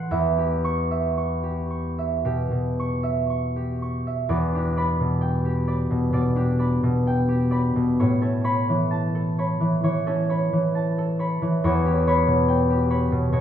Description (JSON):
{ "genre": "classical, solo harp piece", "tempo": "55-71 BPM", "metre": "4/4", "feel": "rubato", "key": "E dorian", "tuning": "A4 = 440 Hz", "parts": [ { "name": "concert harp", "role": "solo", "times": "0.0-13.4 s", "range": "E2 to C#6", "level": "-20 LUFS", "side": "equal", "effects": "none" } ], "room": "wet recital hall reverb, RT60 1.4 s", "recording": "heard from further back in the room", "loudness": "-20 LUFS", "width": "side -9 dB against mid", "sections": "0.0-4.3 A section; 4.3-13.4 A section", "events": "none", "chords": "0.1 Em6; 4.3 Em7; 8.0 Aadd9; 11.6 Em6", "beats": "| 0.12 1.17 2.25 3.31 | 4.33 5.25 6.15 7.05 | 7.97 8.88 9.80 10.72 | 11.61 12.47 13.32" }